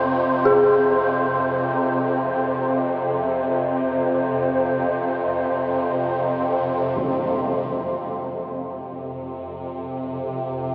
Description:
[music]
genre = dark ambient drone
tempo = free time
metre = none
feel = none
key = F minor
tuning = A4 = 441 Hz
[part]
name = dark detuned synth bell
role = arpeggios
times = 0.0-7.0 s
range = F4 to Ab4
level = -22 LUFS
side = equal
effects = chorus, tape echo
[part]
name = swarming drone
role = drone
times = 0.0-10.7 s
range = F2 to C3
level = -22 LUFS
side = equal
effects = built-in reverb
[part]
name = wind-like tuned noise texture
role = texture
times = 0.0-7.0 s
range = C4 to C5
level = -25 LUFS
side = equal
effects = built-in reverb
[part]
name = impact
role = percussion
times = 7.0-7.2 s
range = none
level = -33 LUFS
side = equal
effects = low-pass filter on sfx
[sound]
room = wet cathedral reverb, RT60 6.0 s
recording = small speaker sound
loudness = -19 LUFS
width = side -25 dB against mid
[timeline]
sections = 0.0-7.0 A section; 7.0-10.7 B section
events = none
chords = 0.0 Fm; 7.0 F5

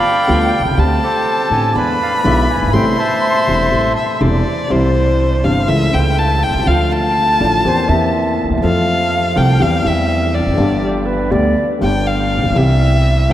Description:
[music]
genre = tango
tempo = 122 BPM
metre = 4/4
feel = rubato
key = A minor, C major from 4.7 s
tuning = A4 = 440 Hz
[part]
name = bandoneon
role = melody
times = 0.0-3.9 s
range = G4 to B5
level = -18 LUFS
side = equal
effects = none
[part]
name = warm violin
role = second line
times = 0.0-13.3 s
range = C5 to C6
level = -18 LUFS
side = left 1 dB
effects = none
[part]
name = dark concert grand piano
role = accompaniment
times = 0.3-13.3 s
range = E1 to A4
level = -17 LUFS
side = left 1 dB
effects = none
[part]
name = upright bass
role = bass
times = 0.3-13.3 s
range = E1 to F2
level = -18 LUFS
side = right 1 dB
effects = none
[part]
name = concert flute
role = second line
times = 7.4-11.7 s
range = G4 to E5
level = -24 LUFS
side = right 2 dB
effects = none
[sound]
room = wet cathedral reverb, RT60 6.5 s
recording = in a vast, echoing space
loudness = -12 LUFS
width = side -12 dB against mid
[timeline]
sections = 0.0-4.7 A section; 4.7-13.3 B section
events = violin solo 4.7-13.3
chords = 0.0 G7; 0.8 D7sus4; 1.8 E7; 2.7 Am7; 4.7 C; 5.7 A/C#; 6.7 Dm; 7.6 C7/E; 8.6 F; 9.6 C/E; 10.6 G; 12.6 C

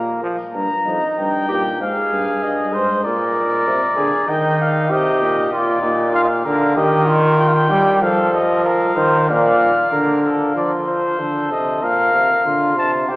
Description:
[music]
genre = classical, imitative canzona for brass ensemble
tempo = 96 BPM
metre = 4/4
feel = straight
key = Eb major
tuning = A4 = 439 Hz
[part]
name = mellow trumpet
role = melody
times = 0.0-13.2 s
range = C5 to Bb5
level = -20 LUFS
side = left 1 dB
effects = none
[part]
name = mellow flugelhorn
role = second line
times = 0.0-13.2 s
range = Eb4 to D5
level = -20 LUFS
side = right 1 dB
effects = none
[part]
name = bright bass trombone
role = bass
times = 0.0-13.2 s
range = F2 to G3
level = -19 LUFS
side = equal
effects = none
[sound]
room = wet church reverb, RT60 3.8 s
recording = heard from further back in the room, small speaker sound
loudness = -15 LUFS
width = side -21 dB against mid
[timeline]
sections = 0.5-10.6 A section; 10.6-13.2 B section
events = none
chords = 0.0 Bb5; 0.5 Eb; 1.8 Fm; 3.0 Bb; 4.3 Eb; 5.5 Bb; 6.8 Ebadd9; 8.0 F; 9.3 Bb; 10.6 F; 11.8 Bb

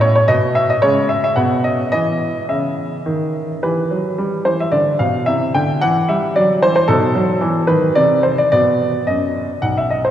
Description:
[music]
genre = classical-period piano sonatina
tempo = 109 BPM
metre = 3/4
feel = rubato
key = E major, E minor from 3.6 s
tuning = A4 = 442 Hz
[part]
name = clear baby grand piano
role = solo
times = 0.0-10.1 s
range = B1 to G5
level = -14 LUFS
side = equal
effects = none
[sound]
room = wet cathedral reverb, RT60 4.3 s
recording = recorded in a church or concert hall, nothing above 10.4 kHz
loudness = -14 LUFS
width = side -10 dB against mid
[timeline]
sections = 0.0-3.6 A section; 3.6-10.1 B section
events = none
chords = 0.3 N.C.; 0.8 C#5; 1.4 N.C.; 1.9 E5; 3.6 Em; 4.7 Bdim; 5.3 C; 6.4 D9; 6.9 B7; 8.0 N.C.; 8.5 B

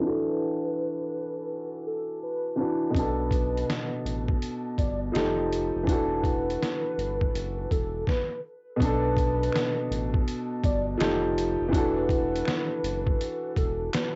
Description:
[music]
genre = lo-fi hip hop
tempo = 82 BPM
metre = 4/4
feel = swing 66% on 16ths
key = unclear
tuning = A4 = 440 Hz
[part]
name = warbly nostalgic lead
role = melody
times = 0.0-14.2 s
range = A4 to D5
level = -34 LUFS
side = equal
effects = chorus, low-pass filter, cassette tape, plate reverb
[part]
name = warm upright piano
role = accompaniment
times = 0.0-14.2 s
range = B2 to B4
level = -31 LUFS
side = equal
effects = low-pass filter, cassette tape, plate reverb
[part]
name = round analog bass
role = bass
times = 2.9-13.9 s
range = E1 to B1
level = -35 LUFS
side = equal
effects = none
[part]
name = trip hop sampler-style drum kit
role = drums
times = 2.9-14.2 s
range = hi-hat, kick drum, snare drum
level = -31 LUFS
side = equal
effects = cassette tape
[part]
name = finger snap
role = percussion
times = 9.5-14.2 s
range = none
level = -43 LUFS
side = equal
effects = none
[sound]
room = moderate booth ambience, RT60 0.2 s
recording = home recording on cassette, nothing above 7.8 kHz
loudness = -28 LUFS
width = mono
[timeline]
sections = 0.0-8.8 A section; 8.8-14.2 B section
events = filter sweep 0.0-8.8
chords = 0.0 E9sus4; 2.9 Bm7; 5.1 F9; 5.9 E9sus4; 8.8 Bm7; 11.0 F9; 11.7 E9sus4

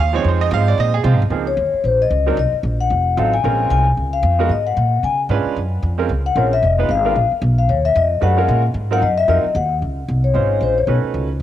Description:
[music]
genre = jazz, small-group swing and bop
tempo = 226 BPM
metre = 4/4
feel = swing 60% on 8ths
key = Db major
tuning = A4 = 435 Hz
[part]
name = clear concert grand piano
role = accompaniment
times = 0.0-11.3 s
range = F3 to F5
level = -22 LUFS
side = right 8 dB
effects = cassette tape
[part]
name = upright bass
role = bass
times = 0.0-11.4 s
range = F1 to Db3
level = -18 LUFS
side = equal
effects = none
[part]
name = vibraphone with soft mallets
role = melody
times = 1.5-10.9 s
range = C5 to Ab5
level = -18 LUFS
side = left 6 dB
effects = cassette tape
[sound]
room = light reverb, small room ambience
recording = home recording on cassette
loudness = -15 LUFS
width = side -12 dB against mid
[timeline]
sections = 0.0-1.3 A section; 1.3-9.8 B section; 9.8-11.4 C section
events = none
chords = 0.0 Dbmaj9 (rootless); 1.3 Dbmaj13; 2.4 Eb5; 2.9 F7b9; 3.4 Bbm9; 4.5 Absus2; 5.0 Db7b9; 5.6 Gbmaj9#11; 6.6 Fm7b5; 7.2 Bb5; 7.7 Ebm11; 8.8 Ab13; 9.8 Dbmaj9; 10.9 Cb7

